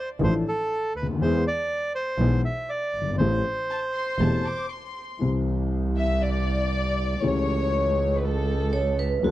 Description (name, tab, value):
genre	tango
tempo	120 BPM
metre	4/4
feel	rubato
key	A minor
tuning	A4 = 439 Hz
part	bandoneon	melody	0.0-4.7 s	A4 to E5	-28 LUFS	right 1 dB	none
part	warm upright piano	accompaniment	0.2-9.3 s	E1 to A4	-27 LUFS	left 3 dB	none
part	clear double bass	bass	0.2-9.3 s	E1 to E2	-26 LUFS	right 2 dB	none
part	warm chamber violin section	second line	3.7-9.0 s	A4 to D6	-28 LUFS	left 2 dB	none
part	vibraphone with hard mallets	second line	8.7-9.3 s	F#4 to C#5	-26 LUFS	right 6 dB	none
room	small room reverb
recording	dry, close 1970s-style studio recording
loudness	-22 LUFS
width	side -14 dB against mid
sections	0.0-5.2 A section; 5.2-9.3 B section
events	violin section solo 5.2-9.3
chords	0.0 Dmadd9; 1.2 E; 3.2 Am7; 5.2 C; 7.2 A7/C#